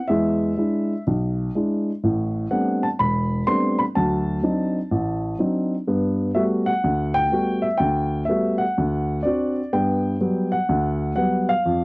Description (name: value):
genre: solo jazz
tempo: 125 BPM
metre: 4/4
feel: swing 68% on 8ths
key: G major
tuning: A4 = 440 Hz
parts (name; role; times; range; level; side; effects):
- dark upright piano; solo; 0.0-11.8 s; E1 to C6; -19 LUFS; equal; none
room: little or no reverb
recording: dry, close 1970s-style studio recording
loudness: -19 LUFS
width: side -27 dB against mid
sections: 0.0-9.7 A section; 9.7-11.8 B section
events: none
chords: 0.1 E7; 2.0 Am11; 4.0 D7b9; 5.9 Gmaj9; 8.8 D7; 9.7 Gmaj7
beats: | 0.10 0.58 1.06 1.54 | 2.03 2.51 2.99 3.47 | 3.95 4.43 4.92 5.40 | 5.88 6.36 6.84 7.32 | 7.80 8.29 8.77 9.25 | 9.73 10.21 10.69 11.17 | 11.65